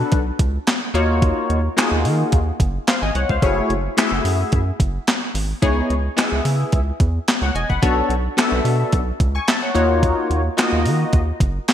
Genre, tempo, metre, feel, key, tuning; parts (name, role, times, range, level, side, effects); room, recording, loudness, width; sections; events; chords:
early-eighties boogie funk; 109 BPM; 4/4; straight; A4 = 440 Hz
funky polysynth comp; accompaniment; 0.0-11.2 s; A3 to C#6; -21 LUFS; left 2 dB; chorus
rubbery square bass; bass; 0.0-11.6 s; E1 to D#3; -21 LUFS; right 1 dB
crisp 8-bit digital drum machine; drums; 0.1-11.7 s; handclaps, hi-hat, kick drum, snare drum; -20 LUFS; equal; overdrive, gated reverb
moderate lush hall reverb, RT60 1.9 s; bright 1980s-style digital production; -16 LUFS; side -10 dB against mid
0.0-11.7 A section
0.0 Bm9; 0.9 D#m9; 3.4 F#m9; 5.6 C#m9; 7.8 Bm9; 9.8 D#m9